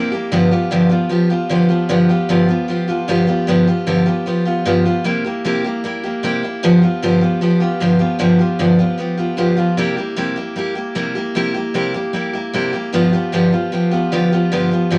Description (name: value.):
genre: rock.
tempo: 152 BPM.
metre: 4/4.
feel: straight.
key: G mixolydian.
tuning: A4 = 440 Hz.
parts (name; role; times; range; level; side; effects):
picked steel-string acoustic guitar; solo; 0.0-15.0 s; G2 to G4; -17 LUFS; equal; none.
room: moderate studio ambience, RT60 0.4 s.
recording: none.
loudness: -17 LUFS.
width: mono.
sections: 0.0-3.5 A section; 3.5-15.0 B section.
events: none.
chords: 0.3 G7; 5.0 C7; 6.6 G7; 9.8 C7; 12.9 G7.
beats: | 0.32 0.71 1.10 1.50 | 1.90 2.29 2.68 3.08 | 3.47 3.87 4.26 4.66 | 5.05 5.44 5.84 6.23 | 6.62 7.02 7.41 7.81 | 8.20 8.60 8.99 9.38 | 9.78 10.17 10.57 10.96 | 11.36 11.75 12.14 12.54 | 12.93 13.33 13.72 14.12 | 14.51 14.91.